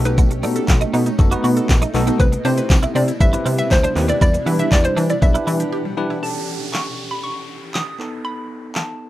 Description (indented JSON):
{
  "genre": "dance-pop",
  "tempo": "119 BPM",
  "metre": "4/4",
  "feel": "straight",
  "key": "unclear",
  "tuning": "A4 = 440 Hz",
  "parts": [
    { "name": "hollow square pluck", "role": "melody", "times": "0.0-9.1 s", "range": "B4 to D#6", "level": "-24 LUFS", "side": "equal", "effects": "chorus" },
    { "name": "bell-like tine electric piano", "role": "accompaniment", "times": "0.0-9.1 s", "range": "B3 to C5", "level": "-26 LUFS", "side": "left 1 dB", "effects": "medium stereo tremolo, sidechain pumping" },
    { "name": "shimmering ambient pad", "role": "sustained chords", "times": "0.0-6.2 s", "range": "B2 to F#5", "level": "-27 LUFS", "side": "equal", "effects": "chorus, built-in reverb, sidechain pumping" },
    { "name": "mallet-like synth pluck", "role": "arpeggios", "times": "0.0-6.2 s", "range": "G3 to B4", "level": "-31 LUFS", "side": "equal", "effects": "chorus, sidechain pumping, tape echo" },
    { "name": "plucky analog bass", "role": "bass", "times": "0.0-5.6 s", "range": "F#1 to E3", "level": "-20 LUFS", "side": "equal", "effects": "sidechain pumping" },
    { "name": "twelve-string electric guitar", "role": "riff", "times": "0.1-5.5 s", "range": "B3 to F#4", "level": "-26 LUFS", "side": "right 5 dB", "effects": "ensemble chorus" },
    { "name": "pop drum kit", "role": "drums", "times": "0.1-8.9 s", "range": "handclaps, hi-hat, kick drum, shaker, snare drum", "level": "-17 LUFS", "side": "equal", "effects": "none" },
    { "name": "tambourine", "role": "percussion", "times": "0.1-5.6 s", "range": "none", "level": "-42 LUFS", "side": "left 2 dB", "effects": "none" },
    { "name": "downlifter", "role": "sound effects", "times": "6.2-9.1 s", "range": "none", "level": "-32 LUFS", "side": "right 2 dB", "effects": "none" }
  ],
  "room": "little or no reverb",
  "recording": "rough home demo mix",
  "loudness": "-16 LUFS",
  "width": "side -14 dB against mid",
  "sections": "0.0-6.2 A section; 6.2-9.1 B section",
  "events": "break 5.7-6.2",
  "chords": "0.0 B7; 2.2 Cmaj7; 4.2 Em7; 6.2 A7; 8.0 B7"
}